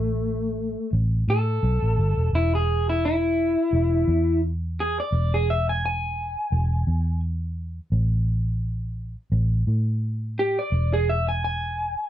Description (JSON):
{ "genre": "straight-eighth soul blues", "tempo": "86 BPM", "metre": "4/4", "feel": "swing 56% on 16ths", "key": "unclear", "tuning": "A4 = 440 Hz", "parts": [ { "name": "electric guitar through a small old amp", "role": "melody", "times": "0.0-12.1 s", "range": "A3 to G#5", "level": "-24 LUFS", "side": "equal", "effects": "none" }, { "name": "vintage muted fingered electric bass", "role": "bass", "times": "0.0-11.9 s", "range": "E1 to A2", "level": "-23 LUFS", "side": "equal", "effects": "none" } ], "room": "little or no reverb", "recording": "dry, close 1970s-style studio recording", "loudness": "-21 LUFS", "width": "side -12 dB against mid", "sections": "0.0-12.1 A section", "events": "clean electric guitar solo 0.0-12.1", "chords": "0.0 N.C.; 2.3 E; 7.9 N.C.; 10.7 E", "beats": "0.23 0.93 1.62 | 2.33 3.02 3.73 4.42 | 5.12 5.83 6.52 7.22 | 7.92 8.62 9.32 10.02 | 10.72 11.42" }